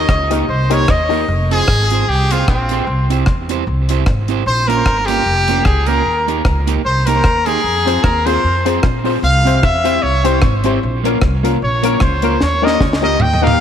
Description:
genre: ska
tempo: 151 BPM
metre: 4/4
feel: swing 56% on 8ths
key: F minor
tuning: A4 = 441 Hz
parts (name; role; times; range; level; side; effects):
- brilliant trumpet; melody; 0.0-13.6 s; C4 to G5; -17 LUFS; equal; tape echo
- electric guitar at the edge of break-up; accompaniment; 0.0-13.6 s; Bb3 to C5; -22 LUFS; right 11 dB; tape echo
- warm upright piano; stabs; 0.0-1.2, 7.9-13.6 s; Bb3 to Eb5; -19 LUFS; left 12 dB; none
- upright bass; bass; 0.0-13.5 s; F1 to F2; -18 LUFS; equal; none
- deep reggae drum kit; drums; 0.1-13.6 s; hi-hat, kick drum, rim click, snare drum, toms; -17 LUFS; equal; none
room: light reverb, studio ambience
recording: 1960s-style stereo with parts hard left and right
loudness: -12 LUFS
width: side -9 dB against mid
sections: 0.0-1.3 A section; 1.3-13.6 A section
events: trumpet solo 0.0-1.3, 1.3-13.6; drum fill 12.4-13.6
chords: 0.0 Eb; 1.3 Fm; 2.9 C; 4.5 Bbm; 6.1 Eb; 7.6 Fm; 9.2 C; 10.8 Bbm; 12.4 Eb

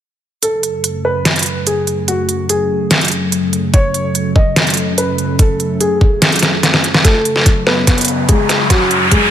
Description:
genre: heavy wobble dubstep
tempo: 145 BPM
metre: 4/4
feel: half-time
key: F# minor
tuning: A4 = 439 Hz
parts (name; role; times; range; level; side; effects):
- dark concert grand piano; melody; 0.4-9.3 s; F#3 to D#5; -18 LUFS; left 1 dB; tape echo
- lush unison pad; sustained chords; 0.4-9.3 s; F#2 to A3; -20 LUFS; equal; chorus, sidechain pumping
- dubstep drum kit; drums; 0.4-9.2 s; hi-hat, snare drum; -14 LUFS; equal; high-pass filter on hats, studio reverb, high-pass filter on snare
- electronic kick drum; drums; 3.7-9.2 s; none; -11 LUFS; equal; studio reverb
- riser; sound effects; 7.6-9.3 s; none; -16 LUFS; left 1 dB; none
room: light reverb, digital ambience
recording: none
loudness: -11 LUFS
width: side -10 dB against mid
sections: 0.4-7.0 A section; 7.0-9.3 B section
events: filter sweep on analog synth pad 0.4-7.0, 7.0-9.3; drum fill 6.4-7.0, 7.0-9.3; build-up 7.0-9.3; riser 7.6-9.3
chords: 0.4 F#m

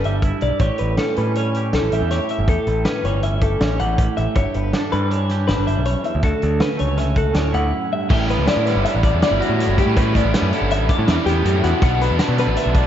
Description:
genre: math rock and midwest emo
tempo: 160 BPM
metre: 5/4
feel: straight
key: unclear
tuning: A4 = 440 Hz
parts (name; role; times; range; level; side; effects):
- twangy electric guitar; accompaniment; 0.0-12.9 s; D2 to G4; -25 LUFS; right 5 dB; lush chorus
- twelve-string electric guitar; arpeggios; 0.0-12.9 s; F#4 to D6; -23 LUFS; left 2 dB; none
- modern bright picked electric bass; bass; 0.0-12.8 s; G1 to B2; -20 LUFS; equal; none
- loose indie drum kit; drums; 0.0-12.8 s; crash cymbal, hi-hat, kick drum, snare drum; -22 LUFS; equal; none
- overdriven electric guitar; riff; 8.1-12.9 s; A2 to E4; -23 LUFS; equal; lush chorus
room: moderate lush hall reverb, RT60 1.9 s, small room ambience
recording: dreamy mix soaked in reverb, vinyl crackle, nothing above 7.6 kHz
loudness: -16 LUFS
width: side -10 dB against mid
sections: 0.0-8.1 A section; 8.1-12.9 B section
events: break 7.7-8.1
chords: 0.0 Em7/G; 0.6 A7; 4.4 Em7/G; 6.2 Dmaj7; 8.1 A9sus4; 11.8 Bm11

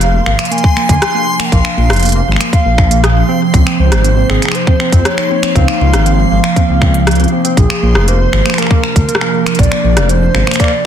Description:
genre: IDM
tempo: 119 BPM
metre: 4/4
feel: straight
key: unclear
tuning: A4 = 437 Hz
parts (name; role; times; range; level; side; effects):
- warbly nostalgic lead; melody; 0.0-10.9 s; Ab4 to Ab5; -18 LUFS; equal; chorus, ping-pong delay
- warbly tape-like pad; sustained chords; 0.0-10.9 s; C3 to Eb4; -18 LUFS; right 2 dB; chorus, built-in reverb, phaser
- dark detuned saw bass; bass; 0.0-10.4 s; F1 to F2; -12 LUFS; equal; none
- organic electronic drum kit; drums; 0.0-10.7 s; finger snaps, hi-hat, rim click; -17 LUFS; equal; soft clipping on snare
- backwards swelling texture; texture; 0.0-10.9 s; C6; -24 LUFS; left 1 dB; built-in reverb
- bright tine electric piano; arpeggios; 0.1-10.7 s; Bb3 to Ab4; -21 LUFS; right 1 dB; wide subtle chorus, ping-pong delay
- electronic kick drum; drums; 0.6-10.7 s; none; -11 LUFS; equal; overdrive
room: light reverb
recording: dense, heavily limited modern master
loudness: -9 LUFS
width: side -9 dB against mid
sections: 0.0-10.9 A section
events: none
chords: 0.0 Bb9; 3.5 Dbmaj7; 7.6 Bb9

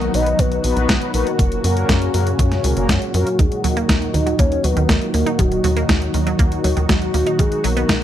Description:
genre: italo disco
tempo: 120 BPM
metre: 4/4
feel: straight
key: Eb minor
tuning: A4 = 440 Hz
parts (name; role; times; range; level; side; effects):
- soft octave-layered synth lead; melody; 0.0-8.0 s; Gb4 to D#5; -23 LUFS; left 1 dB; chorus, tremolo, tape echo
- lush unison pad; sustained chords; 0.0-8.0 s; Bb2 to F#4; -23 LUFS; equal; chorus, phaser
- mellow synth brass; stabs; 0.0-3.3 s; Bb3 to D#5; -26 LUFS; left 2 dB; chorus, cassette tape
- tight sequencer bass; bass; 0.0-8.0 s; Eb1 to Gb2; -20 LUFS; equal; tube saturation
- clean 12-bit digital drum machine; drums; 0.0-8.0 s; hi-hat, snare drum; -23 LUFS; left 1 dB; none
- electronic kick drum; drums; 0.4-8.0 s; none; -18 LUFS; equal; none
- wide unison pluck; arpeggios; 3.4-8.0 s; Eb3 to Eb4; -25 LUFS; right 4 dB; tape echo
room: digital ambience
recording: dry, close 1970s-style studio recording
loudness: -15 LUFS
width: side -11 dB against mid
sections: 0.0-8.0 A section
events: none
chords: 0.0 B; 1.4 Gb; 3.4 Ebm; 7.4 B

